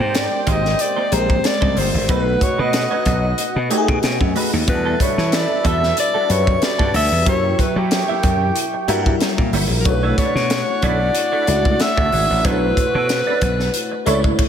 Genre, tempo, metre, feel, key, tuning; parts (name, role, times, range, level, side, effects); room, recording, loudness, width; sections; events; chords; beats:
polished 1980s jazz-funk pop; 93 BPM; 4/4; swing 54% on 16ths; A4 = 440 Hz
breathy alto saxophone; melody; 0.0-14.4 s; G4 to E5; -21 LUFS; left 2 dB; slapback echo
mellow horn section; second line; 0.0-14.0 s; D4 to G5; -27 LUFS; right 4 dB; slapback echo, digital delay
FM electric piano; accompaniment; 0.0-14.4 s; F#3 to C#5; -23 LUFS; left 2 dB; phaser, ensemble chorus, slapback echo
clean electric guitar; riff; 0.0-14.3 s; G3 to E5; -27 LUFS; right 7 dB; ensemble chorus, slapback echo
slap bass; bass; 0.0-14.3 s; G1 to F#3; -20 LUFS; equal
crisp fusion drum kit; drums; 0.1-14.5 s; crash cymbal, hi-hat, kick drum, snare drum; -21 LUFS; equal
moderate lush hall reverb, RT60 2.5 s; big arena sound; -15 LUFS; side -8 dB against mid
0.0-14.5 A section
0.0 G#maj9; 2.1 B7; 4.7 Em11; 7.3 F#7b9; 9.9 Bm11
0.15 0.79 1.44 | 2.09 2.74 3.38 4.03 | 4.68 5.33 5.97 6.62 | 7.27 7.91 8.56 9.21 | 9.86 10.50 11.15 11.80 | 12.45 13.09 13.74 14.39